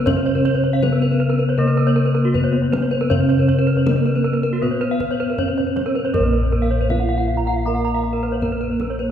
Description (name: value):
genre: Balinese gamelan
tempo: 79 BPM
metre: 4/4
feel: straight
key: Bb pelog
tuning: A4 = 440 Hz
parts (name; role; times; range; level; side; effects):
- gamelan-type bronze metallophone; melody; 0.0-9.1 s; Bb3 to Bb4; -23 LUFS; right 2 dB; none
- gamelan-type bronze metallophone; accompaniment; 0.0-9.1 s; C3+50c to Cb4; -22 LUFS; left 2 dB; none
- gamelan-type bronze metallophone; arpeggios; 0.0-9.0 s; Gb4-40c to Bb5; -25 LUFS; right 2 dB; none
- gamelan-type bossed gongs; bass; 0.0-9.1 s; Bb1 to Bb4; -22 LUFS; left 1 dB; none
- gamelan-type bronze metallophone; arpeggios; 0.1-9.1 s; Gb4-40c to Bb5; -26 LUFS; left 3 dB; none
- kendang; percussion; 0.1-9.0 s; none; -27 LUFS; left 1 dB; none
room: wet concert hall reverb, RT60 2.2 s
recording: recorded in a church or concert hall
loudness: -16 LUFS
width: side -9 dB against mid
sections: 0.0-9.1 A section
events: none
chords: none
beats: | 0.07 0.83 1.59 2.35 | 3.10 3.87 4.62 5.38 | 6.14 6.90 7.66 8.42